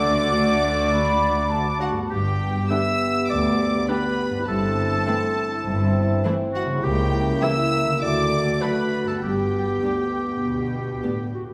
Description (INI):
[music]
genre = cinematic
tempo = 101 BPM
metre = 4/4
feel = straight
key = G major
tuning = A4 = 440 Hz
[part]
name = dark studio violin section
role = melody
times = 0.0-11.3 s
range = F#5 to E6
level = -33 LUFS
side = equal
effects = none
[part]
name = clear clarinet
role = second line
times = 0.0-11.4 s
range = F#4 to E5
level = -30 LUFS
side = equal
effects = none
[part]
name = warm oboe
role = second line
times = 0.0-11.3 s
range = F#4 to E5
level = -31 LUFS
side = equal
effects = none
[part]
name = warm studio violin section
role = second line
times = 0.0-11.1 s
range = C4 to A4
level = -34 LUFS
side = equal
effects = none
[part]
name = warm studio viola section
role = accompaniment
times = 0.0-11.1 s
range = D3 to B3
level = -34 LUFS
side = equal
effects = none
[part]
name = concert harp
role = arpeggios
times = 0.0-11.5 s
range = G2 to G4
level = -34 LUFS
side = equal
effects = none
[part]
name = warm studio cello section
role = bass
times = 0.0-11.5 s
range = C#2 to B2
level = -30 LUFS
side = equal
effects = none
[part]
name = warm studio double bass section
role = bass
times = 0.0-10.9 s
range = G1 to D2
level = -32 LUFS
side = equal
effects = none
[part]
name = large flute ensemble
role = second line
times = 0.3-2.1 s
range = D5 to B5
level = -29 LUFS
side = equal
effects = none
[part]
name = warm French horn section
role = sustained chords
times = 0.3-11.3 s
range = A3 to G4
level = -29 LUFS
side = equal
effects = none
[sound]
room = wet scoring stage reverb, RT60 2.0 s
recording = none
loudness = -22 LUFS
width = mono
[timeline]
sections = 0.0-11.5 A section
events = none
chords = 0.0 D; 2.1 G; 4.5 Am/G; 6.8 C#dim7; 8.0 D; 9.2 G